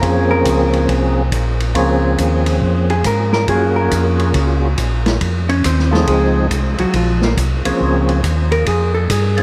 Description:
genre	soul jazz organ trio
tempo	139 BPM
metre	4/4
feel	swing 65% on 8ths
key	Bb minor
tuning	A4 = 440 Hz
part	percussive tonewheel organ	melody	0.0-9.4 s	F3 to A4	-21 LUFS	equal	slow rotary speaker, overdrive, chorus vibrato
part	vintage hollow-body jazz guitar	accompaniment	0.0-9.4 s	Bb2 to Db5	-23 LUFS	equal	none
part	mellow tonewheel organ	bass	0.0-9.4 s	Bb1 to Ab2	-19 LUFS	equal	slow rotary speaker
part	vintage drum kit	drums	0.0-9.4 s	hi-hat, kick drum, ride cymbal, snare drum	-25 LUFS	equal	none
room	wet cathedral reverb, RT60 5.6 s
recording	in a vast, echoing space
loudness	-16 LUFS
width	mono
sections	0.0-9.4 A section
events	hollow-body jazz guitar solo 0.0-9.4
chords	0.0 Bbm9; 3.5 Gbmaj7; 5.2 F7#9; 6.9 Bbm9; 8.7 F(#9)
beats	| 0.03 0.46 0.89 1.32 | 1.75 2.19 2.62 3.05 | 3.48 3.91 4.34 4.78 | 5.21 5.64 6.07 6.50 | 6.93 7.37 7.80 8.23 | 8.66 9.09

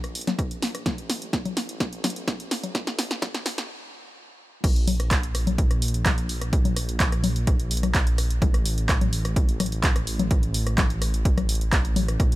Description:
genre	melodic techno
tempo	127 BPM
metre	4/4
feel	straight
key	unclear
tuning	A4 = 439 Hz
part	dark detuned saw bass	bass	0.0-12.4 s	A1 to Bb1	-27 LUFS	equal	tube saturation, sidechain pumping, high-pass filter
part	punchy analog drum machine	drums	0.0-12.4 s	congas, crash cymbal, handclaps, hi-hat, rim click, snare drum	-27 LUFS	left 1 dB	none
part	electronic kick drum	drums	0.4-12.3 s	none	-23 LUFS	equal	none
room	little or no reverb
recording	high-pass filter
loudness	-22 LUFS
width	side -17 dB against mid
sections	0.0-4.6 A section; 4.6-12.4 B section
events	build-up 0.0-4.6; drum fill 0.0-3.7; filter sweep 0.0-4.6; stop 3.7-4.6; drop 4.6-12.4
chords	none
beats	0.39 | 0.86 1.33 1.80 2.28 | 2.75 3.22 3.69 4.17 | 4.64 5.11 5.58 6.06 | 6.53 7.00 7.47 7.95 | 8.42 8.89 9.36 9.84 | 10.31 10.78 11.25 11.73 | 12.20

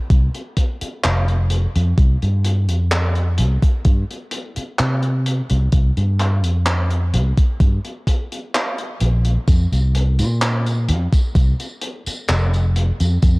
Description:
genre	vaporwave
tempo	64 BPM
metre	4/4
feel	straight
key	unclear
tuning	A4 = 440 Hz
part	fingered electric bass	bass	0.1-13.4 s	F1 to C3	-17 LUFS	equal	none
part	cloth-damped thuddy drum kit	drums	0.1-13.4 s	handclaps, hi-hat, tambourine	-25 LUFS	equal	none
part	electronic kick drum	drums	0.1-13.4 s	none	-15 LUFS	equal	overdrive
room	little or no reverb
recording	dark, warm production, cassette tape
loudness	-16 LUFS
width	side -26 dB against mid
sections	0.0-13.4 A section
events	none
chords	none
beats	0.10 1.04 | 1.98 2.92 3.85 4.79 | 5.73 6.67 7.60 8.54 | 9.48 10.42 11.35 12.29 | 13.23

